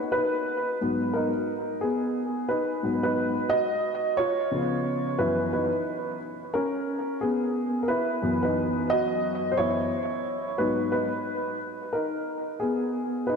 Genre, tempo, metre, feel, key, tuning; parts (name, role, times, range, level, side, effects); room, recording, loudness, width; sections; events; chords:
hip hop; 89 BPM; 4/4; swing 62% on 16ths; G# minor; A4 = 441 Hz
dark upright piano; solo; 0.0-13.4 s; F#2 to D#5; -25 LUFS; equal; tape echo
wet lush hall reverb, RT60 2.9 s; dreamy mix soaked in reverb; -25 LUFS; side -5 dB against mid
0.0-13.4 A section
upright piano solo 0.0-13.4
0.0 G#m9; 4.5 C#7; 5.2 F#7sus4; 10.6 G#m9